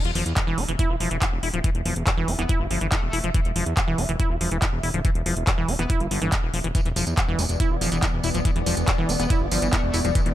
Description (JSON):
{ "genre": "psychedelic trance", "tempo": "141 BPM", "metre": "4/4", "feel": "straight", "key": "E phrygian", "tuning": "A4 = 439 Hz", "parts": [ { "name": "fat analog bass", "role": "bass", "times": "0.0-10.3 s", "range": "D1 to E2", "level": "-26 LUFS", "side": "equal", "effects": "none" }, { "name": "drum and bass drum kit", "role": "drums", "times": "0.0-10.3 s", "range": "handclaps, hi-hat", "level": "-28 LUFS", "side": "equal", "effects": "none" }, { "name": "liquid acid bass", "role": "riff", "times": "0.2-10.3 s", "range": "D3 to F4", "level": "-28 LUFS", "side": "moving between left 4 dB and right 3 dB", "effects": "chorus, auto-pan, sidechain pumping, ping-pong delay" }, { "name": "airy breathy pad", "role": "texture", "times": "0.3-10.3 s", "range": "D5 to E5", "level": "-36 LUFS", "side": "left 3 dB", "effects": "chorus, sidechain pumping" }, { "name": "electronic kick drum", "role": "drums", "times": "0.4-10.2 s", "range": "none", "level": "-22 LUFS", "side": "equal", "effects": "none" }, { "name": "metallic wobble bass", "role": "second line", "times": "2.4-3.2, 5.8-5.9, 9.2-10.0 s", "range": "A3 to B3", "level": "-35 LUFS", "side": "left 2 dB", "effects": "chorus, sidechain pumping, high-pass filter, digital delay" }, { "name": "evolving wavetable pad", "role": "sustained chords", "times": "7.1-10.3 s", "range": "E3 to B3", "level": "-30 LUFS", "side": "right 1 dB", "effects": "chorus, built-in reverb, sidechain pumping" }, { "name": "tambourine", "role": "percussion", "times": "6.8-10.2 s", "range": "none", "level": "-33 LUFS", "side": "right 4 dB", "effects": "none" }, { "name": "zap", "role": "sound effects", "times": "10.0-10.2 s", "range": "none", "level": "-43 LUFS", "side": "equal", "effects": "none" } ], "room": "little or no reverb", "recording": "none", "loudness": "-21 LUFS", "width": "side -13 dB against mid", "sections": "0.0-10.3 A section", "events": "fade-in on analog synth pad 0.0-10.3", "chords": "0.0 E5" }